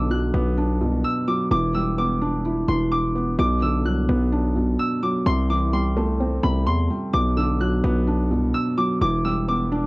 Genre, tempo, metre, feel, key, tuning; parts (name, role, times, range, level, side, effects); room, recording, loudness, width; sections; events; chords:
hip hop, trap; 128 BPM; 4/4; half-time; B phrygian; A4 = 440 Hz
concert harp; melody; 0.0-9.9 s; B5 to F#6; -26 LUFS; equal; cassette tape
felt-muted upright piano; accompaniment; 0.0-9.9 s; B2 to E4; -23 LUFS; right 1 dB; cassette tape
distorted 808-style bass; bass; 0.0-9.9 s; E1 to E2; -23 LUFS; equal; distortion
light reverb; home recording on cassette; -19 LUFS; side -24 dB against mid
0.0-9.9 A section
0.0 Bm; 1.5 Em7; 3.4 Bm; 5.3 C6; 7.1 Bm; 9.0 Em7